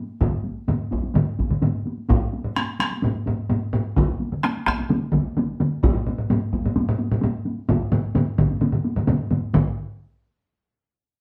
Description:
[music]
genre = japanese traditional, taiko drum ensemble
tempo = 129 BPM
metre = 4/4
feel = straight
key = none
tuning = none
[part]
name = taiko ensemble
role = percussion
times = 0.1-9.8 s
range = none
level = -28 LUFS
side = equal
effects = none
[part]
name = solo taiko drums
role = percussion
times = 0.2-10.0 s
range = none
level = -27 LUFS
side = equal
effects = none
[part]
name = taiko ensemble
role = percussion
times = 0.2-10.0 s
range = none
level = -26 LUFS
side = equal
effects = none
[part]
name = taiko ensemble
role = percussion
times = 0.2-9.8 s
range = none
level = -27 LUFS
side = equal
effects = none
[sound]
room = wet studio reverb, RT60 0.7 s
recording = band playing live in one room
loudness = -23 LUFS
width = mono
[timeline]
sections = 0.0-9.5 A section; 9.5-11.2 B section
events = speeding up 0.0-11.2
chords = none

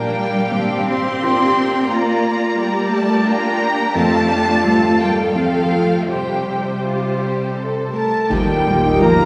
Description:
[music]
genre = cinematic, emotional film score for orchestra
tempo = 79-89 BPM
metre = 3/4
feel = rubato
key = unclear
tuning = A4 = 440 Hz
[part]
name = clear symphonic violin section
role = melody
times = 0.0-9.3 s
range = C5 to C6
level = -24 LUFS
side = equal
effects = none
[part]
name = rich symphonic violin section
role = second line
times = 0.0-9.3 s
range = F4 to Bb5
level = -26 LUFS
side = equal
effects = none
[part]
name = felt-muted upright piano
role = accompaniment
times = 0.0-9.3 s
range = Eb2 to F4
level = -25 LUFS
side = equal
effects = none
[part]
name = warm symphonic viola section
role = accompaniment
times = 0.0-9.3 s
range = F3 to G4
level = -24 LUFS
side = equal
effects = none
[part]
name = rich symphonic cello section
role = bass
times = 0.0-9.3 s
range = C3 to C4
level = -23 LUFS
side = equal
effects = none
[part]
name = concert flute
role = second line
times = 7.9-9.3 s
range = G5 to Bb5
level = -25 LUFS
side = equal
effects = none
[part]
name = dark clarinet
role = second line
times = 7.9-9.3 s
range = G4 to Bb4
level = -24 LUFS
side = equal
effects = none
[part]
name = dark French horn section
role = sustained chords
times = 8.3-9.3 s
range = Bb4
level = -23 LUFS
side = equal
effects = none
[part]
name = rich studio double bass section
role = bass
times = 8.3-9.3 s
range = Eb2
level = -26 LUFS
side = equal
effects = none
[part]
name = clash cymbals and concert bass drum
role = percussion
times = 8.3-9.3 s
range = none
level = -30 LUFS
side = equal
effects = none
[part]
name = timpani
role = percussion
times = 8.3-9.3 s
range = Eb3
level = -30 LUFS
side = equal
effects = none
[sound]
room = wet scoring stage reverb, RT60 2.0 s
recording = heard from further back in the room, studio reverb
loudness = -17 LUFS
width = mono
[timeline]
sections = 0.0-8.3 A section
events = band accent 8.3-9.0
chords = 0.0 Bb6; 4.0 Fsus2; 8.3 Ebadd9

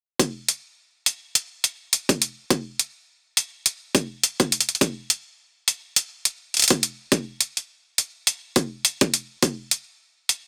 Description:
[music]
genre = glitch hop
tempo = 104 BPM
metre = 4/4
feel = swing 57% on 16ths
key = none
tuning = none
[part]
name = electronic hi-hat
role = drums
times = 0.2-10.4 s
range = none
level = -21 LUFS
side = equal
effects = none
[part]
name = electronic kick drum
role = drums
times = 0.2-9.6 s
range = none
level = -24 LUFS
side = equal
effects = high-pass filter on kick
[sound]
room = little or no reverb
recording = dry, gritty hardware recording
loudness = -24 LUFS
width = mono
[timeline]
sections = 0.2-10.5 A section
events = none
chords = none

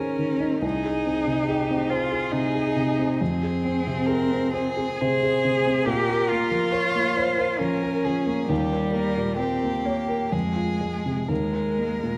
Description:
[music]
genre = classical, slow romantic movement for piano trio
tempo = 61-72 BPM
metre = 3/4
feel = rubato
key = unclear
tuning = A4 = 440 Hz
[part]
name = warm violin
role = melody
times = 0.0-12.2 s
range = G4 to Db5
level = -32 LUFS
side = equal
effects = none
[part]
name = rich cello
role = second line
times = 0.0-12.2 s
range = G3 to Ab4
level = -28 LUFS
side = equal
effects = none
[part]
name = dark baby grand piano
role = accompaniment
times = 0.0-12.2 s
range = C2 to Db5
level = -28 LUFS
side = equal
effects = none
[sound]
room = wet scoring stage reverb, RT60 2.0 s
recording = vinyl crackle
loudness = -24 LUFS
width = mono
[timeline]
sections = 0.0-12.2 A section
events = none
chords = 0.0 Ab; 0.6 Ab/C; 3.2 Fm; 5.9 Bbm; 8.5 Eb7; 10.3 Fm; 11.3 Eb5

